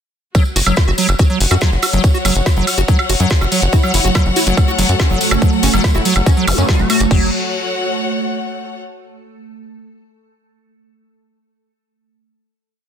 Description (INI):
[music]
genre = psychedelic trance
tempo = 142 BPM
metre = 4/4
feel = straight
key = F# minor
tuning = A4 = 440 Hz
[part]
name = liquid acid bass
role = riff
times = 0.3-7.3 s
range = F#3 to G4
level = -20 LUFS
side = moving between left 3 dB and right 5 dB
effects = chorus, auto-pan, sidechain pumping, tape echo
[part]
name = drum and bass drum kit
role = drums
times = 0.3-7.2 s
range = crash cymbal, hi-hat, snare drum, woodblock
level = -20 LUFS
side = equal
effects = none
[part]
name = electronic kick drum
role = drums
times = 0.3-7.2 s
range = none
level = -14 LUFS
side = equal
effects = none
[part]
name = tambourine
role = percussion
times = 0.3-7.1 s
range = none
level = -26 LUFS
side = right 1 dB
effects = none
[part]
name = clear studio string section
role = texture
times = 0.3-8.8 s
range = F#4 to F#5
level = -22 LUFS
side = left 4 dB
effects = sidechain pumping
[part]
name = tight sequencer bass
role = bass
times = 0.6-7.3 s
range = F#1 to F#2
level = -16 LUFS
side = equal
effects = tube saturation
[part]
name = wide unison lead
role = melody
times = 3.7-7.3 s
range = F#3 to F#4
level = -22 LUFS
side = left 1 dB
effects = phaser, cassette tape, sidechain pumping, dub echo
[part]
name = evolving wavetable pad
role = sustained chords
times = 4.3-7.1 s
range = A3 to A4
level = -22 LUFS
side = right 4 dB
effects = ensemble chorus, built-in reverb, phaser, sidechain pumping
[part]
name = zap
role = sound effects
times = 6.5-6.6 s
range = none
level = -26 LUFS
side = equal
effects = none
[sound]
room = light reverb, digital ambience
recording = dense, heavily limited modern master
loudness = -12 LUFS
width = side -8 dB against mid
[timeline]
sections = 0.3-7.1 drop; 7.1-8.8 final chord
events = drop 0.3-7.1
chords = 0.3 F#5